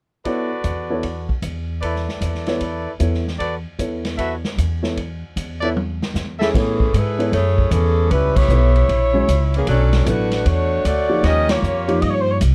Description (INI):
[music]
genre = jazz, big band swing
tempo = 153 BPM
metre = 4/4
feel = swing 65% on 8ths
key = A major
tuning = A4 = 440 Hz
[part]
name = mellow trumpet section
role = stabs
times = 0.2-6.5 s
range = E4 to E5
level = -27 LUFS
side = equal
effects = none
[part]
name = warm upright piano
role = accompaniment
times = 0.3-12.4 s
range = F3 to C#5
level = -26 LUFS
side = equal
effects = none
[part]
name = swinging big-band drum kit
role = drums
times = 0.3-12.5 s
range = crash cymbal, hi-hat, kick drum, ride cymbal, snare drum, toms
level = -28 LUFS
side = equal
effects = none
[part]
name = upright bass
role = bass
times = 0.6-12.5 s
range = A1 to A2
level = -22 LUFS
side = equal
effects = none
[part]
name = bright saxophone section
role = melody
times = 6.4-12.4 s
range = E3 to D#5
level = -22 LUFS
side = equal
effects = none
[sound]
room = little or no reverb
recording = none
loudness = -19 LUFS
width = mono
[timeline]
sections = 0.3-6.5 A section; 6.5-12.5 B section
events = drum fill 5.8-6.5; band accent 8.3, 11.4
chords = 0.3 D6; 1.8 E7sus4; 3.4 D6 (rootless); 5.0 Esus4; 6.5 Amaj7; 8.1 C#m7b5; 8.9 F#7; 9.7 Bm9; 11.2 D#9